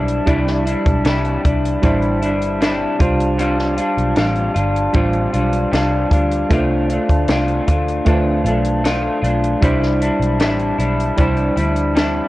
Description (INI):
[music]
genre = indie pop, bedroom pop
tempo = 77 BPM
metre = 4/4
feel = straight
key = C major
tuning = A4 = 440 Hz
[part]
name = electric guitar through a small old amp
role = accompaniment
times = 0.0-12.3 s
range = C3 to F4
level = -19 LUFS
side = left 2 dB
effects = analog chorus, warbly pitch drift
[part]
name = tine electric piano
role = accompaniment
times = 0.0-12.3 s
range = G3 to D5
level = -22 LUFS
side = right 3 dB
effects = cassette tape
[part]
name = vintage muted picked electric bass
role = bass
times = 0.0-12.2 s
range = G1 to D2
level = -20 LUFS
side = equal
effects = none
[part]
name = compact cocktail drum kit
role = drums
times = 0.1-12.1 s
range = hi-hat, kick drum, snare drum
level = -19 LUFS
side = equal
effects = none
[sound]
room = light reverb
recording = worn, warbling old tape, cassette tape, warbly pitch drift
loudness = -15 LUFS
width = side -17 dB against mid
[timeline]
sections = 0.0-12.3 A section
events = none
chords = 0.0 Cadd9; 3.0 G7sus4; 6.5 Dm7/C; 9.6 Cadd9